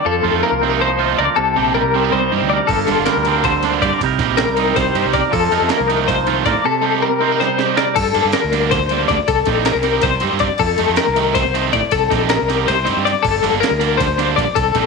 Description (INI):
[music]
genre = math rock and midwest emo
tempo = 318 BPM (eighths)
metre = 7/8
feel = straight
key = G minor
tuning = A4 = 440 Hz
[part]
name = twangy electric guitar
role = accompaniment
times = 0.0-8.0 s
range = G2 to Bb4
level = -19 LUFS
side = right 17 dB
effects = none
[part]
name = twelve-string electric guitar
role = arpeggios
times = 0.0-14.9 s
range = A4 to D5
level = -17 LUFS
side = left 11 dB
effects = tremolo
[part]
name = fuzz fingered electric bass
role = bass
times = 0.1-14.9 s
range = G1 to A2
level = -23 LUFS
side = right 1 dB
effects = overdrive
[part]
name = overdriven electric guitar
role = riff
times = 0.2-14.9 s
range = C3 to Eb4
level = -21 LUFS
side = right 16 dB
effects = none
[part]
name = breakbeat sampler-style drum kit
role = drums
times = 2.7-14.8 s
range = crash cymbal, kick drum, ride cymbal, snare drum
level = -24 LUFS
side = right 6 dB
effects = none
[sound]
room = moderate echo chamber reverb, RT60 1.4 s, digital ambience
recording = 1960s-style stereo with parts hard left and right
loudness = -14 LUFS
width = side -4 dB against mid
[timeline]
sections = 0.0-8.0 A section; 8.0-14.9 B section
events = drum fill 7.4-8.0; kick and snare drop out 12.7-13.2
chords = 0.1 F9sus4; 1.4 Cm7; 2.7 Gm11; 4.0 Cm7; 5.3 F7sus4; 6.6 Cm7; 8.0 Gmadd9; 9.3 Cm7; 10.6 F7sus4; 11.9 Cm7; 13.2 Gmadd9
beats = | 0.05 0.24 0.43 0.62 0.80 0.99 1.18 | 1.37 1.56 1.75 1.94 2.12 2.31 2.50 | 2.69 2.88 3.06 3.25 3.44 3.63 3.82 | 4.01 4.20 4.38 4.57 4.76 4.95 5.14 | 5.33 5.51 5.70 5.89 6.08 6.27 6.46 | 6.64 6.83 7.02 7.21 7.40 7.59 7.78 | 7.96 8.15 8.34 8.53 8.72 8.91 9.10 | 9.29 9.47 9.66 9.85 10.04 10.23 10.42 | 10.60 10.79 10.98 11.17 11.36 11.55 11.74 | 11.92 12.11 12.30 12.49 12.68 12.87 13.06 | 13.24 13.43 13.62 13.81 14.00 14.19 14.38 | 14.57 14.76